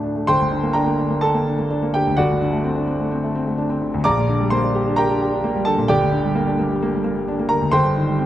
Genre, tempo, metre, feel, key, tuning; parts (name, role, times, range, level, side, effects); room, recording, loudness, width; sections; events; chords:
classical, virtuoso piano study; 129 BPM; 4/4; rubato; G minor; A4 = 440 Hz
warm grand piano; solo; 0.0-8.3 s; G1 to D6; -17 LUFS; equal
moderate recital hall reverb, RT60 1.5 s; close, detailed microphones; -17 LUFS; side -12 dB against mid
0.3-8.3 A section
0.3 Gm; 2.2 D7/G; 4.0 Gm/Bb; 5.9 Gm; 7.7 Cm/G